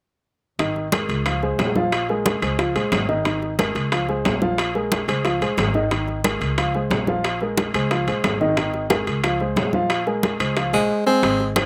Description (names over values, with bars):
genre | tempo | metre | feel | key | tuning
Afro-Cuban jazz | 180 BPM | 4/4 | straight | unclear | A4 = 441 Hz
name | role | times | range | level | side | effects
warm grand piano | accompaniment | 0.6-11.7 s | Eb3 to Ab5 | -25 LUFS | equal | none
upright bass | bass | 0.6-11.7 s | Ab1 to Db2 | -30 LUFS | equal | none
bongos | percussion | 0.6-11.7 s | none | -31 LUFS | equal | slapback echo
congas | percussion | 0.6-11.7 s | none | -27 LUFS | equal | none
timbales | percussion | 0.6-11.7 s | none | -28 LUFS | equal | none
claves | percussion | 0.9-11.7 s | none | -34 LUFS | equal | none
clear tenor saxophone | melody | 10.7-11.5 s | Ab3 to C4 | -21 LUFS | equal | none
room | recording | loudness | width
little or no reverb | recorded outdoors, with no room sound | -21 LUFS | mono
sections
0.6-11.2 A section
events
none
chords
0.6 Absus2; 1.3 Bbm7; 2.6 Dbmaj7; 3.3 Absus2; 3.9 Bbm7; 5.2 Dbmaj7; 5.9 Absus2; 6.6 Bbm7; 7.9 Dbmaj7; 8.6 Absus2; 9.2 Bbm7